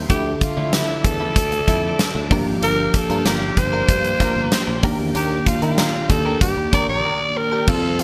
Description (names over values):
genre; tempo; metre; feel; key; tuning
1980s-style pop; 95 BPM; 4/4; straight; unclear; A4 = 436 Hz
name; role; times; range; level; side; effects
tine electric piano; accompaniment; 0.0-8.0 s; D3 to A5; -28 LUFS; equal; none
string machine, full ensemble; sustained chords; 0.0-8.0 s; Bb3 to D6; -33 LUFS; equal; ensemble chorus
fingered electric bass; bass; 0.0-8.0 s; G1 to Eb3; -28 LUFS; equal; none
raspy alto saxophone; melody; 0.1-8.0 s; E4 to D5; -24 LUFS; equal; none
direct-recorded clean electric guitar; riff; 0.1-8.0 s; F3 to Bb4; -30 LUFS; equal; ensemble chorus
huge arena drum kit; drums; 0.1-8.0 s; crash cymbal, hi-hat, kick drum, snare drum; -23 LUFS; equal; gated reverb
mellow synth brass; stabs; 7.7-8.0 s; C3 to F4; -28 LUFS; equal; chorus
room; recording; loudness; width
moderate plate reverb, RT60 1.7 s, small room ambience; bright 1980s-style digital production; -19 LUFS; mono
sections
0.0-7.7 A section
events
none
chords
0.1 Dmadd9; 2.3 Gm7; 4.8 Ebmaj7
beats
| 0.10 0.73 1.36 1.99 | 2.62 3.26 3.89 4.52 | 5.15 5.78 6.42 7.05 | 7.68